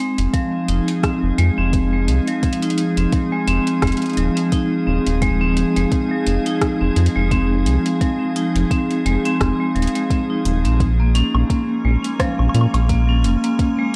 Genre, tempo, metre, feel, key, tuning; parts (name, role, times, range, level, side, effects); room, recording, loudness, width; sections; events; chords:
IDM; 86 BPM; 4/4; swing 56% on 16ths; F minor; A4 = 437 Hz
icy glass pad; sustained chords; 0.2-14.0 s; F3 to Ab4; -27 LUFS; equal; chorus, built-in reverb, vintage 12-bit sampler grit, shimmer reverb
vibraphone with hard mallets; arpeggios; 0.0-14.0 s; F3 to Eb4; -22 LUFS; equal; vintage 12-bit sampler grit, tape echo, shimmer reverb
round analog bass; bass; 0.2-13.4 s; Eb1 to Bb2; -20 LUFS; equal; tube saturation
booming analog drum machine; drums; 0.2-13.7 s; hi-hat, rim click, woodblock; -29 LUFS; equal; studio reverb
electronic kick drum; drums; 0.3-13.7 s; -23 LUFS; equal; studio reverb
light reverb; dry, gritty hardware recording, transformer saturation; -18 LUFS; mono
0.0-14.0 A section
0.0 Fm7; 10.8 Bbm7